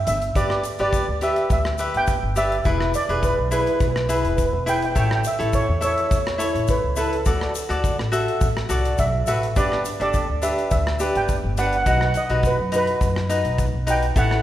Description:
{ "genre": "calypso", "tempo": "104 BPM", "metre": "4/4", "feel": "straight", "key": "G major", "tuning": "A4 = 440 Hz", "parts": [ { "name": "steel pan", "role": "melody", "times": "0.0-14.4 s", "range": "A4 to G5", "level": "-24 LUFS", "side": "right 2 dB", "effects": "none" }, { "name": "upright bass", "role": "bass", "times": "0.0-14.4 s", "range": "E1 to F#2", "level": "-25 LUFS", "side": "equal", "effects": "none" }, { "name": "modern studio drum kit", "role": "drums", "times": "0.1-14.4 s", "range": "hi-hat, kick drum, rim click", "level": "-26 LUFS", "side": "equal", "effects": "none" }, { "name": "tube shaker", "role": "percussion", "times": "0.1-14.3 s", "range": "none", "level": "-39 LUFS", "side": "left 6 dB", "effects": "none" }, { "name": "cavaquinho", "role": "accompaniment", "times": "0.4-14.4 s", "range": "D4 to E5", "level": "-24 LUFS", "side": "left 2 dB", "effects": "none" } ], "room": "moderate scoring stage reverb, RT60 2.0 s", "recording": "recorded in a church or concert hall", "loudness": "-19 LUFS", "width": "side -13 dB against mid", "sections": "0.4-14.4 A section", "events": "none", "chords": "0.4 G6; 2.7 E; 5.0 A; 7.3 D; 9.6 G; 11.9 B" }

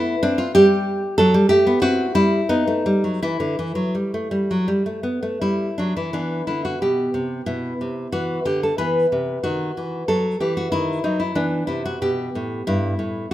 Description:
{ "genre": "classical, baroque-style dance for nylon-string guitar", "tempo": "79-97 BPM", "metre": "4/4", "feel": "rubato", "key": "E minor", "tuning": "A4 = 440 Hz", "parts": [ { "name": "nylon-string guitar", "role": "solo", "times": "0.0-13.3 s", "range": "G2 to B4", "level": "-18 LUFS", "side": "equal", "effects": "none" } ], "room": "moderate recital hall reverb, RT60 1.5 s", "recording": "minimal, uncompressed stereo recording", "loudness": "-18 LUFS", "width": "side -14 dB against mid", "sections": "0.0-6.1 A section; 6.1-13.3 B section", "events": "none", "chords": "0.0 G#dim7 (rootless); 0.5 N.C.; 1.8 C; 2.5 B7; 3.2 Em; 8.8 B; 11.4 Em" }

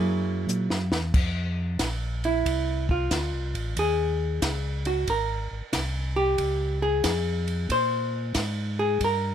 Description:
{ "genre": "soul jazz organ trio", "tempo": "92 BPM", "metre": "4/4", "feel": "swing 66% on 8ths", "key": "unclear", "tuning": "A4 = 440 Hz", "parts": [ { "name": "hollow-body jazz guitar", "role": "accompaniment", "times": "0.0-9.3 s", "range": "Gb3 to C5", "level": "-26 LUFS", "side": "equal", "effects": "none" }, { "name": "mellow tonewheel organ", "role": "bass", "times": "0.0-9.3 s", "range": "Ab1 to Bb2", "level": "-28 LUFS", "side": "equal", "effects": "chorus vibrato, slow rotary speaker" }, { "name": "compact cocktail drum kit", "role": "drums", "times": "0.5-9.2 s", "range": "crash cymbal, hi-hat, kick drum, ride cymbal, snare drum", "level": "-30 LUFS", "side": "equal", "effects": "none" } ], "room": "little or no reverb", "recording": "close, detailed microphones", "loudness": "-24 LUFS", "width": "side -9 dB against mid", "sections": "0.0-1.1 A section; 1.1-9.3 B section", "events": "drum fill 0.5-1.1; hollow-body jazz guitar solo 1.1-9.3", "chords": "0.0 Gb9; 1.1 Fmaj7; 3.8 Dbsus24; 5.1 Ab; 6.4 Dbmaj7" }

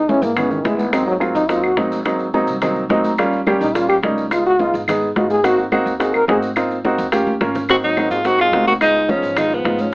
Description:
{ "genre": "Afro-Cuban jazz", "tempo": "213 BPM", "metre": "4/4", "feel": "straight", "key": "Ab mixolydian", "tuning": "A4 = 440 Hz", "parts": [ { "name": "warm trombone", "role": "second line", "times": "0.0-9.9 s", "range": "Eb3 to Bb4", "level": "-18 LUFS", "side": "left 1 dB", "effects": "none" }, { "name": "upright bass", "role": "bass", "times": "0.0-9.9 s", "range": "Ab1 to Ab2", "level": "-31 LUFS", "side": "equal", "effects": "none" }, { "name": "warm upright piano", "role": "accompaniment", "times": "0.1-9.8 s", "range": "Fb3 to Bb5", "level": "-19 LUFS", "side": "right 1 dB", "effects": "none" }, { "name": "bongos", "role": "percussion", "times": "0.1-9.9 s", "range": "none", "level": "-24 LUFS", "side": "left 1 dB", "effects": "none" }, { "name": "congas", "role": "percussion", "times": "0.1-9.9 s", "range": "none", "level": "-27 LUFS", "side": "equal", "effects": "none" }, { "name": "maracas", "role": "percussion", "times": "0.1-9.9 s", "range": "none", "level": "-40 LUFS", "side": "right 1 dB", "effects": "none" }, { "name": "claves", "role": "percussion", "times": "0.4-9.5 s", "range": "none", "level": "-25 LUFS", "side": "left 1 dB", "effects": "none" }, { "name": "breathy tenor saxophone", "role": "melody", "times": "7.7-9.9 s", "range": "Cb4 to Gb4", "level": "-16 LUFS", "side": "equal", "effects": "none" } ], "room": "light reverb", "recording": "AM radio sound", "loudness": "-15 LUFS", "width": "side -26 dB against mid", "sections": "0.0-7.7 A section; 7.7-9.9 B section", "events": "trombone solo 0.0-7.7; upright piano fill 2.8-3.2; drum fill 7.1-7.7", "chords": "0.0 Dbm7; 0.9 Ab7; 3.2 Eb7; 4.3 Db7; 5.4 Ab7; 7.1 Eb7; 7.7 Ab7; 8.8 Db7" }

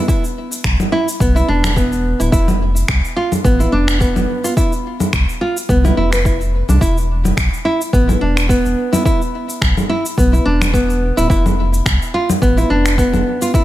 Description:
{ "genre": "organic downtempo", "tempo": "107 BPM", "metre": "4/4", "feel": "swing 55% on 16ths", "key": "unclear", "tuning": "A4 = 440 Hz", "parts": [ { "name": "nylon-string guitar", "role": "arpeggios", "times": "0.0-13.6 s", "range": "B3 to B4", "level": "-17 LUFS", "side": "right 1 dB", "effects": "ping-pong delay" }, { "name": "electronic kick drum", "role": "drums", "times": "0.1-13.6 s", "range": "none", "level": "-18 LUFS", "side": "equal", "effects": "overdrive" }, { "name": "electronic shaker, finger snaps and congas", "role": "drums", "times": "0.1-13.6 s", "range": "none", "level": "-20 LUFS", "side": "equal", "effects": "none" }, { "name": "warm sub bass", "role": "bass", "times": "0.6-13.2 s", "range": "D1 to C2", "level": "-16 LUFS", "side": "equal", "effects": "sidechain pumping" } ], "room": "digital ambience", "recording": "none", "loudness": "-13 LUFS", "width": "side -14 dB against mid", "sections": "0.0-13.6 A section", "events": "none", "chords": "0.0 E5; 2.3 F5; 6.8 E5; 11.3 N.C." }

